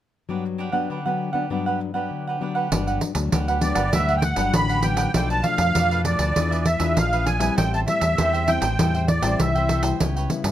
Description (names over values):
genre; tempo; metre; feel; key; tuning
samba and choro; 99 BPM; 4/4; straight; G major; A4 = 440 Hz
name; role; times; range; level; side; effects
cavaquinho; accompaniment; 0.3-10.3 s; D4 to G5; -28 LUFS; right 4 dB; none
nylon-string guitar; accompaniment; 0.3-10.5 s; G2 to F4; -27 LUFS; left 6 dB; none
fingered electric bass; bass; 2.7-10.5 s; G1 to G2; -24 LUFS; equal; none
pandeiro; percussion; 2.7-10.5 s; none; -25 LUFS; right 2 dB; none
musette accordion; melody; 3.6-9.8 s; D5 to B5; -23 LUFS; right 2 dB; none
room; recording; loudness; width
light reverb; close, detailed microphones; -19 LUFS; side -12 dB against mid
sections
0.3-2.7 A section; 2.7-10.5 B section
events
none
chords
0.3 Gmaj7; 5.1 Bm7b5; 6.4 E7b9; 7.6 Am7; 10.0 C#m7b5